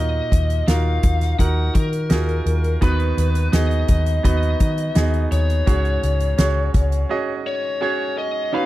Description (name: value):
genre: piano-driven pop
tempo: 84 BPM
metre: 4/4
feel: straight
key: unclear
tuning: A4 = 444 Hz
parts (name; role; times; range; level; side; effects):
- lead guitar through a small cranked amp; melody; 0.0-8.7 s; A#4 to F#5; -26 LUFS; left 3 dB; overdrive, slapback echo
- clear baby grand piano; accompaniment; 0.0-8.7 s; G#2 to D#5; -25 LUFS; right 4 dB; none
- vintage muted picked electric bass; bass; 0.0-7.0 s; C#2 to D#3; -19 LUFS; equal; none
- soft-mallet drum kit; drums; 0.3-7.1 s; hi-hat, kick drum, snare drum; -19 LUFS; equal; none
- sweeping resonant pad; sustained chords; 8.5-8.7 s; B3 to D#4; -37 LUFS; equal; none
room: little or no reverb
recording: dry, close 1970s-style studio recording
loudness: -17 LUFS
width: side -16 dB against mid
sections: 0.0-8.5 A section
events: break 7.1-8.5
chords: 0.0 D#madd9; 2.8 B/D#; 5.7 C#sus4